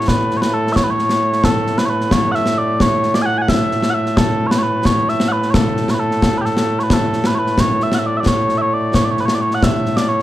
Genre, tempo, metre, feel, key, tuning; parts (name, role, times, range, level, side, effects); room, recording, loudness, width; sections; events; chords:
scottish traditional, Scottish pipe music; 88 BPM (dotted quarters); 6/8; straight; A major; A4 = 442 Hz
mellow small bagpipes; melody; 0.0-10.2 s; A2 to G#5; -16 LUFS; equal
concert snare drum and concert bass drum; drums; 0.1-10.2 s; -18 LUFS; left 1 dB
moderate recital hall reverb, RT60 1.5 s; dark, warm production; -14 LUFS; side -14 dB against mid
0.0-6.9 A section; 6.9-10.2 A section